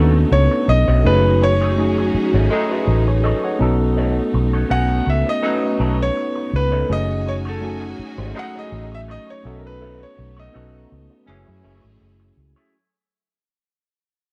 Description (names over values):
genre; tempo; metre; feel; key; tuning
soul; 82 BPM; 4/4; swing 54% on 16ths; F# dorian; A4 = 440 Hz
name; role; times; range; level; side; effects
barky tine electric piano; accompaniment; 0.0-12.8 s; A3 to G#5; -25 LUFS; equal; lush chorus
clear studio string section; sustained chords; 0.0-12.7 s; F#3 to G#5; -31 LUFS; equal; none
electric guitar through a small old amp; riff; 0.0-12.7 s; A3 to D#5; -33 LUFS; equal; wah, spring reverb
vintage muted fingered electric bass; bass; 0.0-12.5 s; F#1 to F#2; -21 LUFS; equal; none
clear grand piano; melody; 0.3-12.2 s; A4 to F#5; -24 LUFS; equal; none
mellow horn section; stabs; 2.5-11.8 s; A2 to G#4; -28 LUFS; equal; none
room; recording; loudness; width
little or no reverb; dry, close 1970s-style studio recording; -18 LUFS; mono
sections
0.0-12.7 A section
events
fade-out 0.0-12.7; grand piano solo 0.0-12.7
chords
0.0 B9; 1.0 F#m69; 3.6 B9; 6.9 F#m69; 9.4 B9; 11.3 F#m9